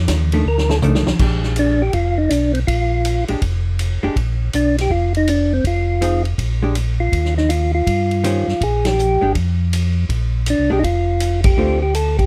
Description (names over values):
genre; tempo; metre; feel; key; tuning
soul jazz organ trio; 162 BPM; 4/4; swing 65% on 8ths; Bb mixolydian; A4 = 437 Hz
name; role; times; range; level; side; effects
mellow tonewheel organ; bass; 0.0-12.3 s; F1 to G2; -21 LUFS; equal; chorus vibrato, slow rotary speaker
swinging big-band drum kit; drums; 0.1-12.2 s; crash cymbal, hi-hat, kick drum, ride cymbal, snare drum, toms; -25 LUFS; equal; none
archtop guitar, miked and amplified; accompaniment; 0.3-11.8 s; D3 to C5; -24 LUFS; equal; none
percussive tonewheel organ; melody; 0.5-12.3 s; C4 to Bb4; -21 LUFS; equal; slow rotary speaker
room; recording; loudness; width
little or no reverb; close, detailed microphones; -18 LUFS; mono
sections
0.0-1.2 A section; 1.2-12.3 B section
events
tonewheel organ solo 0.0-1.2; drum fill 0.5-1.2; band accent 8.8, 11.4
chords
0.0 F6 (rootless); 1.2 Bb6; 5.6 Fm7; 6.4 Bb6; 7.1 Eb13; 8.6 Bb7(no3); 11.6 Dm7